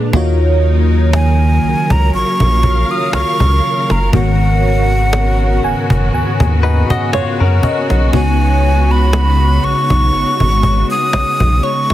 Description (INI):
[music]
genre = contemporary R&B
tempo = 60 BPM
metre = 4/4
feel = swing 54% on 16ths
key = Eb minor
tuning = A4 = 439 Hz
[part]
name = FM electric piano with soft pad layer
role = accompaniment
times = 0.0-11.9 s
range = Ab2 to Ab5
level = -18 LUFS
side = equal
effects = chorus, phaser
[part]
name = clear studio string section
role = sustained chords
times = 0.0-11.9 s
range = Db3 to F5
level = -21 LUFS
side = left 1 dB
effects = none
[part]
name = rubbery square bass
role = bass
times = 0.1-11.9 s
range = Gb1 to Gb2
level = -13 LUFS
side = equal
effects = none
[part]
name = cajon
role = drums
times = 0.1-11.9 s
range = none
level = -16 LUFS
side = equal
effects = none
[part]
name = glassy wavetable pluck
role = texture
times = 0.1-3.6, 11.6-11.9 s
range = Db5 to Eb5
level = -28 LUFS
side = left 6 dB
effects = chorus, tape echo
[part]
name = breathy hollow jazz flute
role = melody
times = 1.1-11.9 s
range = Gb5 to Eb6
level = -17 LUFS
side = equal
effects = tape echo
[part]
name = direct-recorded clean electric guitar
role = arpeggios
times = 6.6-8.1 s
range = Db4 to Eb5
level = -20 LUFS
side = left 7 dB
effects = none
[sound]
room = studio reverb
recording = heavily compressed radio sound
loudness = -11 LUFS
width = side -13 dB against mid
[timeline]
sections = 0.1-11.9 A section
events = FM electric piano fill 5.1-8.1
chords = 0.1 Ebm7; 4.1 Abm11; 8.1 Db7sus4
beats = | 0.13 1.13 2.13 3.13 | 4.13 5.13 6.13 7.13 | 8.13 9.13 10.13 11.13